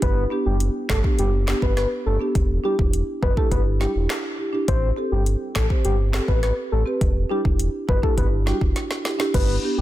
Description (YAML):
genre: dancehall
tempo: 103 BPM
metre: 4/4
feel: straight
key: E minor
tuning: A4 = 440 Hz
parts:
  - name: soft octave-layered synth lead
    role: melody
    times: 0.0-9.8 s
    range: G4 to C5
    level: -27 LUFS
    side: left 2 dB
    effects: chorus, digital delay
  - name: sub bass with octave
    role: bass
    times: 0.0-9.8 s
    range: E1 to A1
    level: -22 LUFS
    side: equal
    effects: none
  - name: afro-pop drum kit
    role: drums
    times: 0.0-9.5 s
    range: crash cymbal, handclaps, hi-hat, kick drum, rim click, snare drum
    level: -23 LUFS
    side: equal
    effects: none
  - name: marimba with medium mallets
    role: accompaniment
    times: 0.3-9.8 s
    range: B3 to C5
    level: -26 LUFS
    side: right 2 dB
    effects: sidechain pumping
room: little or no reverb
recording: dense, heavily limited modern master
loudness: -19 LUFS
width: side -14 dB against mid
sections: 0.0-9.3 A section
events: drum fill 8.8-9.3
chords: 0.0 G; 2.4 Em7; 4.7 Am7; 7.0 Em7